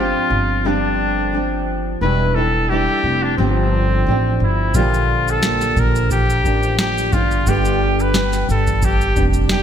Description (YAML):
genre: acoustic pop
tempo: 88 BPM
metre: 4/4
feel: swing 55% on 16ths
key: unclear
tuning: A4 = 440 Hz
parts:
  - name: warm trumpet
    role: melody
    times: 0.0-9.6 s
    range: C4 to B4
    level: -20 LUFS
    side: left 1 dB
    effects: digital delay
  - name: flamenco guitar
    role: accompaniment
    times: 0.0-9.6 s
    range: E2 to G4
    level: -21 LUFS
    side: equal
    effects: double-tracked left and right
  - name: upright bass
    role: bass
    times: 0.0-9.6 s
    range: E1 to Bb1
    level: -20 LUFS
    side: equal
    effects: none
  - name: booming analog drum machine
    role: drums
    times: 4.7-9.6 s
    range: kick drum, shaker, snare drum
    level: -20 LUFS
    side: equal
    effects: none
room: light reverb, studio reverb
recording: bright 1980s-style digital production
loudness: -15 LUFS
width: side -9 dB against mid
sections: 0.0-4.7 A section; 4.7-9.6 B section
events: none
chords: 0.0 G7sus4; 2.0 Em7; 3.4 G7sus4; 4.7 Bb6; 7.1 G